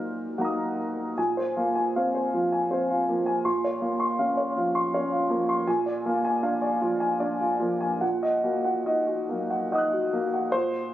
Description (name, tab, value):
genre	neoclassical minimalist piano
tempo	70-82 BPM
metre	3/4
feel	rubato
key	unclear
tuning	A4 = 442 Hz
part	warm upright piano	solo	0.0-10.9 s	Bb2 to Gb6	-24 LUFS	equal	none
room	light reverb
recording	recorded on a phone in the room, studio ambience, compression, nothing above 7.9 kHz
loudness	-23 LUFS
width	side -13 dB against mid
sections	0.0-1.2 A section; 1.2-10.5 B section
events	none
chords	0.0 Ebm/Bb; 1.2 Fm/Bb; 3.5 Bbmadd9; 5.7 Bb7; 8.0 Ebm/Bb